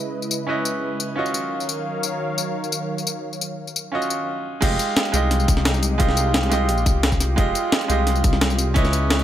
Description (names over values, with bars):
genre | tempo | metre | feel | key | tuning
liquid drum and bass | 174 BPM | 4/4 | straight | unclear | A4 = 439 Hz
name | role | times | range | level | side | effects
bright baby grand piano | accompaniment | 0.0-9.2 s | Ab3 to Eb5 | -24 LUFS | right 2 dB | digital delay
warm analog pad | sustained chords | 0.0-9.2 s | Db3 to F5 | -28 LUFS | equal | chorus, sidechain pumping
breakbeat sampler-style drum kit | drums | 0.2-9.2 s | crash cymbal, hi-hat, snare drum, tambourine | -23 LUFS | left 1 dB | studio reverb
dark detuned saw bass | bass | 4.6-9.2 s | F1 to Db2 | -21 LUFS | equal | none
electronic kick drum | drums | 4.6-8.8 s | none | -20 LUFS | equal | studio reverb
room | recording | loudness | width
little or no reverb | none | -19 LUFS | side -11 dB against mid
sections
0.0-4.6 A section; 4.6-9.2 B section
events
break 4.3-4.6; drop 4.6-9.2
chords
0.0 Dbm9; 1.2 Ebm9; 4.6 Fm9